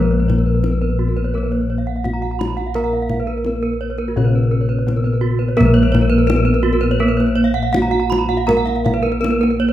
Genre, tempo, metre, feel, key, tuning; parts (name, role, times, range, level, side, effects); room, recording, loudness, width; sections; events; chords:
Balinese gamelan; 79-85 BPM; 4/4; straight; Bb pelog; A4 = 441 Hz
gamelan-type bronze metallophone; melody; 0.0-9.7 s; Bb3 to Bb4; -21 LUFS; right 1 dB
gamelan-type bronze metallophone; accompaniment; 0.0-9.7 s; C3+50c to Bb3; -25 LUFS; right 3 dB
gamelan-type bronze metallophone; arpeggios; 0.0-9.7 s; Gb4-40c to Bb5; -25 LUFS; left 2 dB
gamelan-type bronze metallophone; arpeggios; 0.0-9.7 s; Gb4-40c to Cb6; -25 LUFS; right 7 dB
gamelan-type bossed gongs; bass; 0.0-9.7 s; Bb1 to Bb4; -18 LUFS; left 2 dB
kendang; percussion; 0.1-9.5 s; -24 LUFS; left 2 dB
moderate recital hall reverb, RT60 1.4 s; -15 LUFS; side -12 dB against mid
0.0-9.7 A section